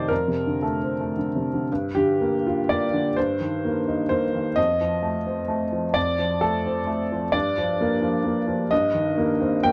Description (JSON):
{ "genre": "neoclassical minimalist piano", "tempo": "110-134 BPM", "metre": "3/4", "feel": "rubato", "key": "G minor", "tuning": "A4 = 440 Hz", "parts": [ { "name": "clear upright piano", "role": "solo", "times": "0.0-9.7 s", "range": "F2 to G5", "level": "-24 LUFS", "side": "equal", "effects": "none" } ], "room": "light reverb", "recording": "dark, warm production", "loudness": "-24 LUFS", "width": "mono", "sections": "0.0-1.7 A section; 1.7-9.7 B section", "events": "none", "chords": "0.1 Dm7/F; 1.7 Gm7; 3.2 Cm7/G; 4.6 F7; 7.3 Gm7; 8.7 Cm7/G" }